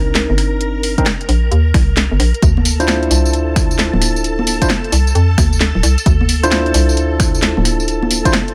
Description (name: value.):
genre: UK garage, two-step garage.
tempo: 132 BPM.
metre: 4/4.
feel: swing 65% on 16ths.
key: unclear.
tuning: A4 = 442 Hz.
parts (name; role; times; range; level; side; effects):
soft string machine; sustained chords; 0.0-8.5 s; A4 to Bb5; -28 LUFS; equal; ensemble chorus, sidechain pumping.
tine electric piano; stabs; 0.0-8.3 s; C4 to C5; -21 LUFS; equal; tape echo.
hollow knocking FM bass; bass; 0.0-8.2 s; D1 to F2; -17 LUFS; equal; none.
garage drum kit; drums; 0.2-8.5 s; congas, finger snaps, hi-hat, snare drum, tambourine; -20 LUFS; equal; none.
electronic kick drum; drums; 1.0-8.3 s; none; -18 LUFS; equal; overdrive.
room: digital ambience.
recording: none.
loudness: -14 LUFS.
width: mono.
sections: 0.0-8.5 A section.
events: none.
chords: 0.0 Cm9; 2.4 Dm9.